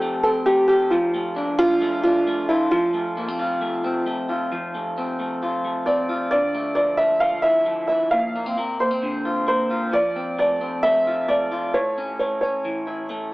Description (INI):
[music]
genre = indie pop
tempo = 133 BPM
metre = 4/4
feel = straight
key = F major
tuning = A4 = 435 Hz
[part]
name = dark upright piano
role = melody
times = 0.0-13.1 s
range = E4 to F5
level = -20 LUFS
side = equal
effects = none
[part]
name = electric guitar through a small old amp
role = arpeggios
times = 0.0-13.3 s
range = A2 to G4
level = -25 LUFS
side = left 1 dB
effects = spring reverb
[sound]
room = moderate large studio reverb, RT60 1.0 s, small room ambience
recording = small speaker sound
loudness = -19 LUFS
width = side -20 dB against mid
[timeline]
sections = 0.0-4.5 A section; 4.5-6.3 B section; 6.3-13.3 C section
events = none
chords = 0.0 Fadd9; 0.9 Dm/F; 2.7 F; 6.3 Dmadd9; 8.1 Bbadd9; 9.9 F; 11.7 A